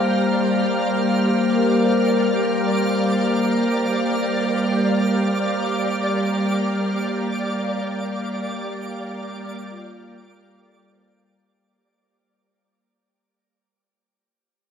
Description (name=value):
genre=ambient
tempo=free time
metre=none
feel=none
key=G minor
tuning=A4 = 440 Hz
part: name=soft additive organ-like pad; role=sustained chords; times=0.0-11.6 s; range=G3 to F5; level=-20 LUFS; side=left 1 dB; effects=ensemble chorus, built-in reverb
part: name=vibraphone with medium hard mallets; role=arpeggios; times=0.0-12.3 s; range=F4 to Bb5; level=-26 LUFS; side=right 3 dB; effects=diffuse ambient delay
part: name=twinkling granular texture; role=texture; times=0.0-11.6 s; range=D5 to D6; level=-28 LUFS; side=equal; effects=built-in reverb
room=wet shimmer reverb, RT60 6.8 s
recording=none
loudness=-19 LUFS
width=side -8 dB against mid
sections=0.0-11.6 A section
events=fade-in on synth texture 0.0-11.6; fade-out on vibraphone 0.0-11.6; fade-out 6.6-11.6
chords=0.0 Gm9